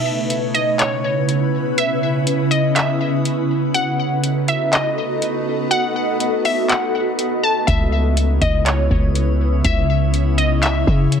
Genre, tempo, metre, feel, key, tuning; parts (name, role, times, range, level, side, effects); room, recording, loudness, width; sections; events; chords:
hip hop, atmospheric cloud-rap; 122 BPM; 4/4; half-time; C# minor; A4 = 441 Hz
glassy wavetable pluck; melody; 0.0-11.1 s; C#5 to A5; -21 LUFS; left 1 dB; chorus, low-pass filter, ping-pong delay
ethereal airy pad; sustained chords; 0.0-11.2 s; C#3 to D#5; -20 LUFS; equal; ensemble chorus, built-in reverb, phaser, sidechain pumping
drifting glass-harmonics texture; texture; 0.0-11.2 s; A3 to D#6; -29 LUFS; left 1 dB; chorus, built-in reverb
booming analog drum machine; drums; 0.3-11.2 s; handclaps, hi-hat, kick drum; -21 LUFS; equal
warm 808-style bass; bass; 7.7-11.2 s; C#2 to C#3; -17 LUFS; equal
light reverb; heavily compressed radio sound, multiband compression; -16 LUFS; side -7 dB against mid
0.0-11.2 A section
break 0.0-7.7
0.0 C#m7; 3.7 B7; 7.7 C#m7